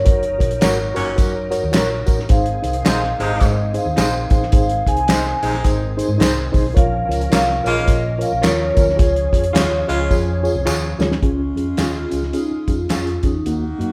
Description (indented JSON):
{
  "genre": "uptempo 1960s-style soul",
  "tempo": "108 BPM",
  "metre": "4/4",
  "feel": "swing 60% on 8ths",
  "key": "Db major",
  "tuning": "A4 = 440 Hz",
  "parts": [
    { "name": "vibraphone with soft mallets", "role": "melody", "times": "0.0-13.9 s", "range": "Db4 to Ab5", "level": "-25 LUFS", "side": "equal", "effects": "none" },
    { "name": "bright tonewheel organ", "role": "sustained chords", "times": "0.0-11.2 s", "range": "Eb3 to Bb4", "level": "-33 LUFS", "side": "equal", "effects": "chorus vibrato, slow rotary speaker" },
    { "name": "hollow-body short-scale fingered electric bass", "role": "bass", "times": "0.0-13.9 s", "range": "Gb1 to Bb2", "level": "-26 LUFS", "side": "equal", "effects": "none" },
    { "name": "reed electric piano", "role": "accompaniment", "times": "0.1-13.9 s", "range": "Bb3 to Db5", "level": "-26 LUFS", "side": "equal", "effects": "fast tremolo" },
    { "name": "cloth-damped thuddy drum kit", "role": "drums", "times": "0.1-13.9 s", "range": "hi-hat, kick drum, snare drum", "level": "-20 LUFS", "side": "equal", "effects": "none" },
    { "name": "bright saxophone section", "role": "second line", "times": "0.6-13.9 s", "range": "Bb2 to Gb4", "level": "-30 LUFS", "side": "equal", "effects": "none" },
    { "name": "electric guitar through a small old amp", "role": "stabs", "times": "0.6-13.0 s", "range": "Eb4 to Db5", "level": "-31 LUFS", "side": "equal", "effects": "none" },
    { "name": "handclaps and tambourine", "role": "percussion", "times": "0.6-13.6 s", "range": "none", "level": "-32 LUFS", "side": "equal", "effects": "none" }
  ],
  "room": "moderate large studio reverb, RT60 1.2 s",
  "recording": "band playing live in one room",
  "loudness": "-18 LUFS",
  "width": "mono",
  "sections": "0.0-11.2 A section; 11.2-13.9 B section",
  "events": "drum fill 10.1-11.2",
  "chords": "0.0 Gb; 2.3 Ab; 6.8 Bbm; 9.0 Db",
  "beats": "| 0.07 0.63 1.19 1.74 | 2.30 2.86 3.42 3.98 | 4.53 5.09 5.65 6.21 | 6.76 7.32 7.88 8.44 | 8.99 9.55 10.11 10.67 | 11.22 11.78 12.34 12.90 | 13.46"
}